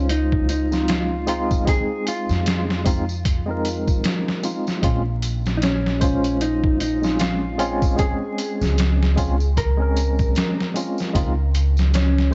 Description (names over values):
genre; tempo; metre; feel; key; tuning
trip hop; 76 BPM; 4/4; swing 58% on 16ths; Bb minor; A4 = 440 Hz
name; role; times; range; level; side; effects
mellow electric guitar; melody; 0.0-12.3 s; Db4 to Bb4; -28 LUFS; equal; tape echo
tine electric piano; accompaniment; 0.0-12.3 s; Ab3 to C5; -28 LUFS; equal; tremolo, tape echo
upright bass; bass; 0.0-12.3 s; Bb1 to F2; -24 LUFS; equal; tube saturation
trip hop sampler-style drum kit; drums; 0.1-12.3 s; hi-hat, kick drum, snare drum; -25 LUFS; equal; overdrive
tambourine; percussion; 0.1-12.1 s; none; -40 LUFS; equal; none
room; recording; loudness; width
light reverb; vinyl crackle, nothing above 8.0 kHz; -21 LUFS; mono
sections
0.0-12.3 A section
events
none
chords
0.0 Dbmaj7; 4.8 Bbm7; 11.1 Dbmaj7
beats
0.10 0.89 | 1.68 2.46 3.25 4.04 | 4.83 5.62 6.41 7.20 | 7.99 8.78 9.57 10.36 | 11.15 11.94